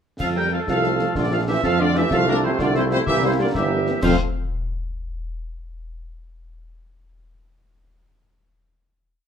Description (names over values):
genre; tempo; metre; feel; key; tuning
military-style march for wind band; 126 BPM (dotted quarters); 6/8; straight; F major; A4 = 439 Hz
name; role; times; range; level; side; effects
warm trumpet section; melody; 0.2-4.2 s; Bb4 to G5; -25 LUFS; equal; none
warm euphonium; second line; 0.2-4.2 s; Bb2 to G3; -25 LUFS; right 3 dB; none
warm woodwind section; second line; 0.2-4.2 s; D4 to C5; -27 LUFS; left 1 dB; none
clear trombone section; sustained chords; 0.2-4.2 s; F3 to C4; -29 LUFS; right 3 dB; none
warm tuba; bass; 0.2-4.2 s; G1 to F2; -23 LUFS; right 2 dB; none
concert snare drum, clash cymbals and concert bass drum; drums; 0.2-4.2 s; none; -30 LUFS; left 2 dB; none
dark French horn section; accompaniment; 0.4-4.2 s; F3 to D4; -27 LUFS; left 6 dB; none
room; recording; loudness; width
moderate large studio reverb, RT60 0.9 s; none; -18 LUFS; side -8 dB against mid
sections
0.2-4.0 A section; 4.0-5.0 final chord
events
none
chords
0.2 F; 1.2 Bbmaj7; 2.1 F/C; 3.1 C7; 4.0 F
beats
| 0.20 0.68 | 1.16 1.64 | 2.12 2.59 | 3.07 3.55 | 4.03